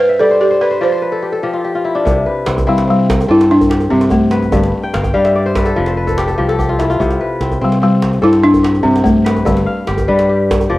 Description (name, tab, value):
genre	west african traditional, West African string and xylophone music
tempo	97 BPM (dotted quarters)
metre	12/8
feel	straight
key	C major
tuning	A4 = 439 Hz
part	balafon	melody	0.0-10.8 s	G3 to C5	-13 LUFS	equal	cassette tape
part	kora	arpeggios	0.0-10.8 s	G2 to A5	-16 LUFS	left 2 dB	none
part	fingered electric bass	bass	2.1-10.8 s	F1 to C3	-18 LUFS	equal	none
part	djembe	percussion	2.1-10.7 s	none	-20 LUFS	right 1 dB	none
room	light reverb, small room ambience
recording	home recording on cassette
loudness	-11 LUFS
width	side -17 dB against mid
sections	0.0-2.1 A section; 2.1-10.8 A section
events	kora fill 0.0-2.1, 4.8-7.0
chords	0.0 N.C.; 2.1 C; 4.5 G; 5.8 F5; 7.0 C5; 9.5 G